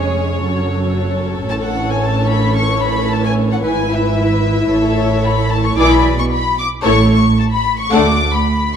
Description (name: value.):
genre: quick classical-period movement for string orchestra.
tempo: 112 BPM.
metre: 4/4.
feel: rubato.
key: unclear.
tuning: A4 = 440 Hz.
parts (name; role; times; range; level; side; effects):
warm symphonic violin section; melody; 0.0-8.8 s; C#5 to D6; -20 LUFS; left 4 dB; none.
warm symphonic violin section; second line; 0.0-8.2 s; G#4 to F#5; -21 LUFS; left 3 dB; none.
dark symphonic viola section; accompaniment; 0.0-8.2 s; E3 to E4; -19 LUFS; equal; none.
dark studio double bass section; bass; 0.0-8.4 s; E#1 to D2; -19 LUFS; right 2 dB; none.
warm symphonic cello section; bass; 0.0-8.4 s; D2 to B2; -20 LUFS; right 3 dB; none.
room: wet recital hall reverb, RT60 1.8 s.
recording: dark, warm production.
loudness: -13 LUFS.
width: side -8 dB against mid.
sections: 0.0-8.8 A section.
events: none.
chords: 0.4 F#m; 1.5 A; 3.6 E/G#; 4.7 A; 5.8 E7/B; 6.9 A; 7.9 D.